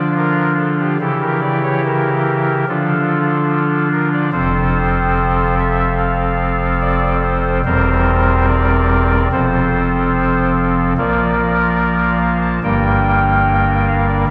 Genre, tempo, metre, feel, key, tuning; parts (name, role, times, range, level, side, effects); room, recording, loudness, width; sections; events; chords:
classical, chorale-style piece for pipe organ; 72 BPM; 4/4; straight; A4 = 439 Hz
pipe organ, soft reed; solo; 0.0-14.3 s; E1 to A5; -16 LUFS; equal
wet church reverb, RT60 2.8 s; dark, warm production; -16 LUFS; mono
0.0-14.3 A section
0.0 Dm; 1.0 C#dim7; 2.7 Dm; 4.3 F; 7.7 C7/E; 9.3 F; 11.0 Bb; 12.6 Gm